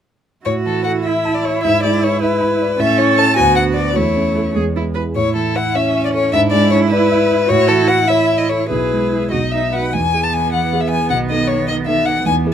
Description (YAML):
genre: quick classical-period movement for piano quartet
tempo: 103 BPM (dotted quarters)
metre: 6/8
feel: rubato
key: A major, E major from 7.5 s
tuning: A4 = 440 Hz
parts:
  - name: warm violin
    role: melody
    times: 0.5-12.3 s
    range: A4 to A5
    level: -17 LUFS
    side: left 5 dB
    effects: none
  - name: rich cello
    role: second line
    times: 0.5-12.5 s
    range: D#3 to B4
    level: -21 LUFS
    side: right 6 dB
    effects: none
  - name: dark concert grand piano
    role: accompaniment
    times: 0.5-12.5 s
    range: B1 to B5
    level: -19 LUFS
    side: right 2 dB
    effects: none
  - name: warm viola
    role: accompaniment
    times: 0.5-12.5 s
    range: G#3 to E4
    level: -22 LUFS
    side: right 3 dB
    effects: none
room: light reverb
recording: none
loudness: -13 LUFS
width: side -9 dB against mid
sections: 0.5-9.9 A section; 9.9-12.5 B section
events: none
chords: 0.5 A5; 1.6 E7/G#; 2.8 A; 3.4 Bm/D; 4.0 A/E; 4.6 E; 5.2 A; 6.3 E7/G#; 7.5 A; 8.7 E/B; 9.3 B; 9.9 E; 11.1 B7